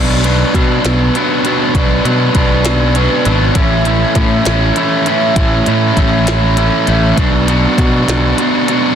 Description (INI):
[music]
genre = indie rock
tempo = 66 BPM (dotted quarters)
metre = 6/8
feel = straight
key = B minor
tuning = A4 = 443 Hz
[part]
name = biting overdriven guitar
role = riff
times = 0.0-8.9 s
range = A2 to F#4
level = -12 LUFS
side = right 1 dB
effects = spring reverb
[part]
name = modern bright picked electric bass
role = bass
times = 0.0-8.3 s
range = G#1 to B2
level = -15 LUFS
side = equal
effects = none
[part]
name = glitchy drum kit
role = drums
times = 0.2-8.8 s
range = hi-hat, kick drum, snare drum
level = -16 LUFS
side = equal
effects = soft clipping on snare
[sound]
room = light reverb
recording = dense, heavily limited modern master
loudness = -10 LUFS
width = side -8 dB against mid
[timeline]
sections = 0.0-8.9 A section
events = none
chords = 0.0 Bm; 3.6 A; 7.2 Bm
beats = 0.85 | 1.75 2.65 | 3.56 4.46 | 5.37 6.27 | 7.17 8.08